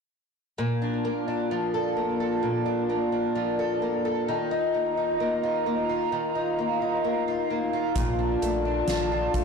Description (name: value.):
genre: dream pop.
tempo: 65 BPM.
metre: 4/4.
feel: straight.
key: Bb major.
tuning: A4 = 443 Hz.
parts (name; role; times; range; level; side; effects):
warbly tape-like pad; sustained chords; 0.9-9.4 s; F4 to Bb5; -27 LUFS; right 2 dB; chorus, built-in reverb.
fingerpicked twelve-string acoustic guitar; arpeggios; 0.6-9.4 s; Bb2 to A4; -27 LUFS; left 3 dB; lush chorus, ping-pong delay.
warm sub bass; bass; 8.0-9.4 s; Bb1; -32 LUFS; right 2 dB; none.
soft-mallet drum kit; drums; 8.0-9.4 s; hi-hat, kick drum, snare drum; -31 LUFS; right 1 dB; none.
room: light reverb, small room reverb.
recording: blown-out, overdriven recording, overdrive.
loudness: -24 LUFS.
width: side -5 dB against mid.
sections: 0.6-9.4 A section.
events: none.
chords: 0.6 Bbmaj7; 4.3 Ebsus2.